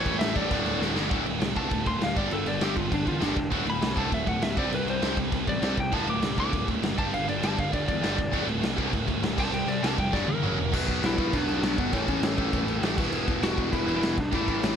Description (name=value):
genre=punk rock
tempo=200 BPM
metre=4/4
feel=straight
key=D mixolydian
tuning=A4 = 441 Hz
part: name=lightly driven lead guitar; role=melody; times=0.0-14.8 s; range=B3 to D6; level=-31 LUFS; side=left 1 dB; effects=ping-pong delay
part: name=biting overdriven guitar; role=riff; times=0.0-14.8 s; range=D2 to C4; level=-30 LUFS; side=equal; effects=none
part: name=high-gain distorted guitar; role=riff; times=0.0-10.7 s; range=D2 to C5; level=-33 LUFS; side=right 2 dB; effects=distortion
part: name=fuzz picked electric bass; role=bass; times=0.0-14.8 s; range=D1 to E2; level=-33 LUFS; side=equal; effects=overdrive
part: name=raw garage drum kit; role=drums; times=0.1-14.7 s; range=crash cymbal, kick drum, snare drum, toms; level=-28 LUFS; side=equal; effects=none
room=light reverb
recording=none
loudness=-24 LUFS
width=side -8 dB against mid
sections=0.0-1.1 A section; 1.1-10.7 B section; 10.7-14.8 A section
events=drum fill 0.8-1.1, 10.1-10.7; lead electric guitar solo 1.1-10.7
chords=0.0 A; 0.5 D; 2.2 G; 3.5 D; 4.6 C; 5.9 D; 7.0 G; 8.3 D; 9.4 C; 10.1 F#7; 10.7 B5; 11.9 A; 13.0 E5